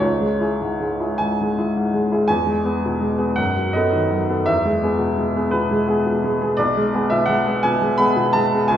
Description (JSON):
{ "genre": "classical, romantic character piece for solo piano", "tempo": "56 BPM (dotted quarters)", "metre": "6/8", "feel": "rubato", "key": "unclear", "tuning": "A4 = 445 Hz", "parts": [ { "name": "bright baby grand piano", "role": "solo", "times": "0.0-8.8 s", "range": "B1 to B5", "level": "-17 LUFS", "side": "equal", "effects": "none" } ], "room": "wet recital hall reverb, RT60 1.4 s", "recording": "heard from further back in the room", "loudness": "-17 LUFS", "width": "side -10 dB against mid", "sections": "0.0-8.8 A section", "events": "none", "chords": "0.0 C#m; 2.3 E; 3.4 B7/F#; 4.5 E; 6.6 Bm6" }